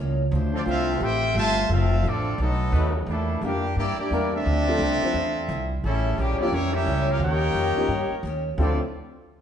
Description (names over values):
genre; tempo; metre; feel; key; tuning
jazz, big band swing; 174 BPM; 4/4; swing 63% on 8ths; D minor; A4 = 440 Hz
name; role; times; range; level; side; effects
picked old ladder-braced acoustic guitar; accompaniment; 0.0-8.8 s; A2 to G4; -34 LUFS; left 2 dB; none
upright bass; bass; 0.0-8.8 s; F1 to G2; -25 LUFS; equal; none
bright trombone section; sustained chords; 0.3-3.1 s; F3 to C5; -35 LUFS; equal; none
warm trombone section; second line; 0.5-8.8 s; Bb2 to G4; -29 LUFS; equal; none
clear trumpet section; melody; 0.6-8.8 s; G3 to A5; -27 LUFS; equal; none
warm upright piano; accompaniment; 3.4-8.8 s; F3 to C5; -29 LUFS; left 2 dB; none
room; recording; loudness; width
wet large studio reverb, RT60 1.3 s; band playing live in one room, nothing above 10.6 kHz; -21 LUFS; side -9 dB against mid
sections
0.0-3.1 A section; 3.1-8.6 B section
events
none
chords
0.3 Dm9; 2.4 B7; 3.1 Em7b5; 4.5 Dm9; 5.8 A7b9b13; 7.2 Eb7; 8.6 Dm9